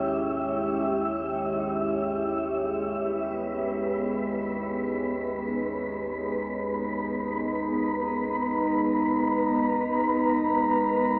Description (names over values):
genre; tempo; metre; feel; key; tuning
dark ambient drone; free time; none; none; G# harmonic minor; A4 = 440 Hz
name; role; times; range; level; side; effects
deep dark ambient pad; sustained chords; 0.0-11.2 s; G#3 to A#5; -27 LUFS; equal; chorus, built-in reverb, shimmer reverb
deep rumbling drone; drone; 0.0-11.2 s; G#1 to D#2; -46 LUFS; equal; built-in reverb, wide subtle chorus
wind-like tuned noise texture; texture; 0.0-11.2 s; B3 to E5; -28 LUFS; equal; built-in reverb, shimmer reverb
quartz singing bowl; arpeggios; 4.8-11.2 s; B2 to C#4; -48 LUFS; equal; none
room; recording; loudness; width
wet huge ambient reverb, RT60 8.0 s; worn, warbling old tape, cassette tape, warbly pitch drift, small speaker sound; -24 LUFS; side -29 dB against mid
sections
0.0-3.0 A section; 3.0-11.2 B section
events
none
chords
0.0 C#m/G#; 3.0 G#m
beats
free time